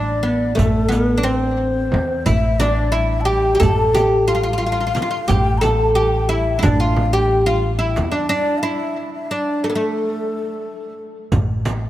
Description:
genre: Turkish makam ensemble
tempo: 179 BPM (eighths)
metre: 9/8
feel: straight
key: A makam ussak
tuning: A4 = 439 Hz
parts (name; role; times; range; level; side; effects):
- oud; melody; 0.0-10.9 s; A3 to A4; -19 LUFS; equal; tape echo
- breathy mellow ney; second line; 0.0-11.0 s; A4 to B5-32c; -25 LUFS; left 3 dB; none
- upright bass; bass; 0.0-11.9 s; A1 to E2; -20 LUFS; equal; none
- darbuka; percussion; 0.3-11.8 s; none; -23 LUFS; right 1 dB; none
- frame drum; percussion; 0.6-11.8 s; none; -26 LUFS; right 1 dB; none
- riq; percussion; 0.6-11.8 s; none; -31 LUFS; right 5 dB; none
room: moderate plate reverb, RT60 3.5 s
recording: dreamy mix soaked in reverb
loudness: -16 LUFS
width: side -14 dB against mid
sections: 0.0-11.3 A section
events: break 8.3-11.3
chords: none

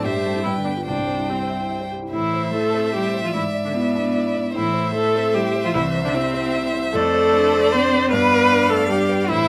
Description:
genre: quick classical-period movement for piano quintet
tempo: 150 BPM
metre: 3/4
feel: straight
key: A minor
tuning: A4 = 440 Hz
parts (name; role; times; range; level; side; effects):
- clear violin; melody; 0.0-9.5 s; D5 to G5; -28 LUFS; equal; none
- rich cello; second line; 0.0-9.5 s; B2 to C4; -29 LUFS; equal; none
- rich violin; second line; 0.0-9.5 s; B4 to D5; -32 LUFS; equal; none
- rich viola; accompaniment; 0.0-9.5 s; B3 to C5; -23 LUFS; equal; none
- warm grand piano; accompaniment; 0.0-9.5 s; C2 to G5; -28 LUFS; equal; none
room: light reverb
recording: none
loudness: -20 LUFS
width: mono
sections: 0.0-2.1 A section; 2.1-9.5 B section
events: none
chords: 0.0 C/G; 0.5 G7; 0.9 C; 2.1 Am; 3.3 E7/G#; 4.6 Am; 5.8 C; 6.9 Dm7/F; 8.1 G7

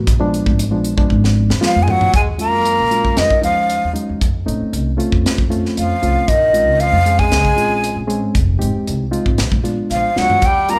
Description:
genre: electric jazz fusion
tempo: 116 BPM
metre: 4/4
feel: straight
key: Eb dorian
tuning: A4 = 440 Hz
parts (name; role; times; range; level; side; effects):
- barky reed electric piano; accompaniment; 0.0-10.8 s; F3 to Ab4; -23 LUFS; equal; overdrive
- upright bass; bass; 0.0-10.8 s; F1 to A2; -22 LUFS; equal; none
- crisp fusion drum kit; drums; 0.1-10.8 s; hi-hat, kick drum, snare drum, toms; -21 LUFS; equal; none
- breathy jazz flute; melody; 1.6-10.8 s; Eb5 to Bb5; -18 LUFS; equal; none
- breathy tenor saxophone; second line; 1.7-10.8 s; Eb3 to Bb3; -26 LUFS; equal; none
room: moderate large studio reverb, RT60 1.2 s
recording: band playing live in one room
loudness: -16 LUFS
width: mono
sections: 0.0-2.1 A section; 2.1-10.8 B section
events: drum fill 1.1-2.1, 10.2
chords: 0.1 Bb7b9; 2.1 Ebm11; 4.2 F7b13; 6.3 Bbm7; 8.4 Fm7; 9.4 Bb7b9

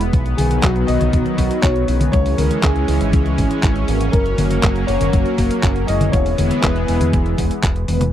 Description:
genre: italo disco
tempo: 120 BPM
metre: 4/4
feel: straight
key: unclear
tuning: A4 = 441 Hz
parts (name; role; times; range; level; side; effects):
- lush unison pad; sustained chords; 0.0-8.1 s; D#3 to C#4; -23 LUFS; equal; chorus
- mellow synth brass; stabs; 0.0-8.0 s; F#3 to B4; -24 LUFS; right 2 dB; chorus
- fingered electric bass with an envelope filter; bass; 0.0-8.1 s; E1 to E2; -20 LUFS; equal; none
- detuned 8-bit digital drum machine; drums; 0.0-8.1 s; congas, handclaps, hi-hat, toms; -23 LUFS; left 1 dB; overdrive
- electronic kick drum; drums; 0.1-7.7 s; none; -18 LUFS; equal; overdrive
- dark grand piano; melody; 0.4-7.1 s; F#4 to D#5; -24 LUFS; left 4 dB; tape echo
room: little or no reverb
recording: dry, close 1970s-style studio recording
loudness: -14 LUFS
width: side -11 dB against mid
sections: 0.0-8.1 A section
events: drum fill 7.9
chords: 0.1 B; 2.1 C#m; 4.1 F#; 6.1 E

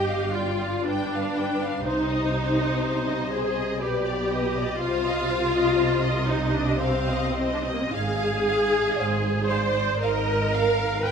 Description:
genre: classical, slow romantic movement for string orchestra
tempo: 60 BPM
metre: 3/4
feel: rubato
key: C minor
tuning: A4 = 440 Hz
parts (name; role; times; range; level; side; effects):
- warm symphonic violin section; melody; 0.0-11.1 s; B4 to G5; -32 LUFS; left 5 dB; none
- warm symphonic violin section; second line; 0.0-11.1 s; B4 to G5; -32 LUFS; left 1 dB; none
- clear symphonic viola section; accompaniment; 0.0-11.1 s; Bb3 to C5; -24 LUFS; equal; none
- dark symphonic cello section; bass; 0.0-11.1 s; G2 to C3; -30 LUFS; right 1 dB; none
- rich symphonic double bass section; bass; 0.0-11.1 s; G1 to C2; -31 LUFS; right 2 dB; none
room: moderate scoring stage reverb, RT60 1.9 s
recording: minimal, uncompressed stereo recording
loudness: -22 LUFS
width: side -6 dB against mid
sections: 0.0-11.1 A section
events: none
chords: 0.0 G7; 1.8 Cm; 3.8 G/B; 4.8 Cm; 7.9 Fm/Ab

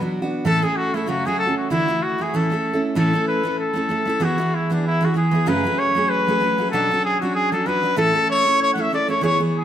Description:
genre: celtic folk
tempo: 192 BPM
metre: 4/4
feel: swing 56% on 8ths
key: A major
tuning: A4 = 440 Hz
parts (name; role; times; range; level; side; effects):
- picked steel-string acoustic guitar; accompaniment; 0.0-9.6 s; F#2 to A4; -21 LUFS; right 2 dB; none
- clear trumpet; melody; 0.5-9.6 s; D4 to F#5; -20 LUFS; left 1 dB; none
room: moderate recital hall reverb, RT60 1.6 s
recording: close, detailed microphones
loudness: -18 LUFS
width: side -10 dB against mid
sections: 0.0-3.0 A section; 3.0-9.6 B section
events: none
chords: 0.5 A; 1.1 F#m; 1.7 Dadd9; 2.3 A; 4.2 E; 5.5 F#madd9; 6.7 Bmadd9; 8.0 A

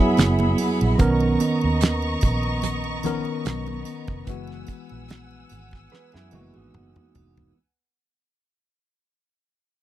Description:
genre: lush 1970s-style soul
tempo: 73 BPM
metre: 4/4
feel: swing 54% on 16ths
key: unclear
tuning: A4 = 440 Hz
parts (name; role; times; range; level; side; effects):
- mellow tine electric piano; accompaniment; 0.0-7.6 s; D#3 to A#4; -24 LUFS; moving between left 14 dB and right 3 dB; auto-pan
- dark studio string section; sustained chords; 0.0-7.5 s; B3 to E6; -30 LUFS; equal; none
- vintage muted fingered electric bass; bass; 0.2-7.5 s; E#1 to F#2; -25 LUFS; right 1 dB; none
- damped 70s drum kit; drums; 0.2-7.6 s; hi-hat, kick drum, snare drum, toms; -21 LUFS; right 1 dB; none
- congas; percussion; 0.2-7.1 s; none; -32 LUFS; right 4 dB; none
- triangle; percussion; 0.2-7.5 s; none; -41 LUFS; right 18 dB; none
- electric guitar through a small old amp; riff; 5.9-7.5 s; D#4 to B4; -57 LUFS; right 6 dB; none
room: little or no reverb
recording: dry, close 1970s-style studio recording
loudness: -20 LUFS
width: side -13 dB against mid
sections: 0.0-7.6 A section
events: fade-out 0.0-7.6; drum fill 5.9-7.6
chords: 0.0 F#9sus4; 1.0 Bmaj9; 4.3 F#9sus4

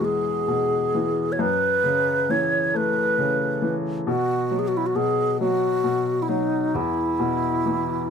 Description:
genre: celtic folk, Celtic slow air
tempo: 45 BPM (dotted quarters)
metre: 6/8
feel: rubato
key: E major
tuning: A4 = 440 Hz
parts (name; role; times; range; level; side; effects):
- breathy bright wooden-headed alto flute; melody; 0.0-8.1 s; D#4 to C#5; -22 LUFS; right 1 dB; none
- bright upright piano; accompaniment; 0.0-8.1 s; E2 to A3; -25 LUFS; left 2 dB; none
room: light reverb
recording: close, detailed microphones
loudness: -20 LUFS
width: side -7 dB against mid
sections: 0.0-8.1 A section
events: none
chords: 0.0 E; 1.4 F#m7; 4.1 B5; 6.7 E5

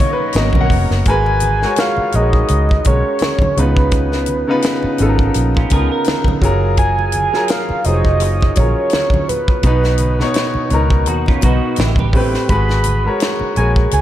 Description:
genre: R&B, neo-soul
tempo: 84 BPM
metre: 4/4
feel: swing 55% on 16ths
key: G# dorian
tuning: A4 = 440 Hz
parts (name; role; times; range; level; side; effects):
- clear concert grand piano; accompaniment; 0.0-14.0 s; A2 to F#5; -18 LUFS; left 1 dB; none
- string machine, full ensemble; sustained chords; 0.0-1.1 s; B2 to A#4; -27 LUFS; equal; ensemble chorus
- vintage muted fingered electric bass; bass; 0.0-14.0 s; E#1 to D#2; -16 LUFS; equal; none
- tight funk drum kit; drums; 0.0-14.0 s; hi-hat, kick drum, snare drum; -18 LUFS; equal; none
- congas; percussion; 0.4-14.0 s; none; -26 LUFS; right 2 dB; none
- soft octave-layered synth lead; melody; 1.1-14.0 s; B4 to B5; -20 LUFS; right 2 dB; chorus, diffuse ambient delay
- clean electric guitar; second line; 5.6-6.4, 11.1-12.5 s; C#4 to B4; -25 LUFS; right 5 dB; ensemble chorus
room: light reverb, small room ambience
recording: none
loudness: -13 LUFS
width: side -12 dB against mid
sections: 0.0-1.1 A section; 1.1-14.0 B section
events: grand piano solo 0.0-1.1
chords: 0.3 G#m11; 1.1 G#m9; 3.6 C#13; 6.4 F#maj9; 9.6 Bmaj7; 11.8 Am9; 12.5 G#m9

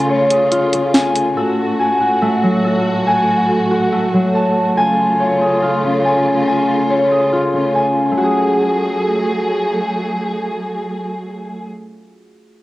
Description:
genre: hip hop, drill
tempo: 141 BPM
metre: 4/4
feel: half-time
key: F# harmonic minor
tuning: A4 = 441 Hz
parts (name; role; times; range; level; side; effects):
- dark symphonic string section; sustained chords; 0.0-11.7 s; A2 to G#4; -19 LUFS; right 1 dB; none
- concert harp; arpeggios; 0.0-11.7 s; F#3 to A5; -15 LUFS; left 1 dB; analog delay
- drill drum kit; drums; 0.3-1.3 s; hi-hat, snare drum; -16 LUFS; equal; vintage 12-bit sampler grit, cassette tape
room: moderate spring reverb, RT60 1.2 s, small room reverb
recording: home recording on cassette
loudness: -13 LUFS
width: side -17 dB against mid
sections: 0.0-8.2 A section; 8.2-11.6 B section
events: break 0.0-1.4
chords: 0.0 C#; 1.4 F#madd9; 4.8 C#; 8.2 F#madd9

